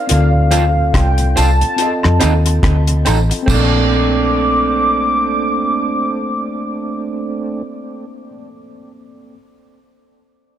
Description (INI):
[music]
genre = lovers rock reggae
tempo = 71 BPM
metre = 4/4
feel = swing 58% on 16ths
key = Bb major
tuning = A4 = 440 Hz
[part]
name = warm velvety synth lead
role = melody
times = 0.0-7.6 s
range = F5 to D6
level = -19 LUFS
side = equal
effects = chorus, tremolo, tape echo
[part]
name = mellow tine electric piano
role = accompaniment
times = 0.0-9.4 s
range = Bb3 to Eb5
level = -23 LUFS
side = left 3 dB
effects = medium stereo tremolo, dub echo
[part]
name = vintage muted fingered electric bass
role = bass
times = 0.1-8.3 s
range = A1 to F2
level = -14 LUFS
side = equal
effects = none
[part]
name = deep reggae drum kit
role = drums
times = 0.1-3.7 s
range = crash cymbal, hi-hat, kick drum, rim click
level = -19 LUFS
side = equal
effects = dub echo
[part]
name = mellow tonewheel organ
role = accompaniment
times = 0.3-7.6 s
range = D2 to Eb4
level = -25 LUFS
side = right 4 dB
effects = overdrive, chorus vibrato, slow rotary speaker, dub echo
[part]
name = electric guitar through a small old amp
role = stabs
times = 0.5-8.4 s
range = C4 to A4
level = -22 LUFS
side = right 4 dB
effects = dub echo
[part]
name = tambourine and woodblock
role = percussion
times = 0.5-3.9 s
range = none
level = -28 LUFS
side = right 3 dB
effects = dub echo
[sound]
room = small room ambience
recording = none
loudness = -13 LUFS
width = side -10 dB against mid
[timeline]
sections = 0.0-3.5 A section; 3.5-6.9 B section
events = none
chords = 0.1 Dm7; 1.8 F7; 3.5 Bbmaj9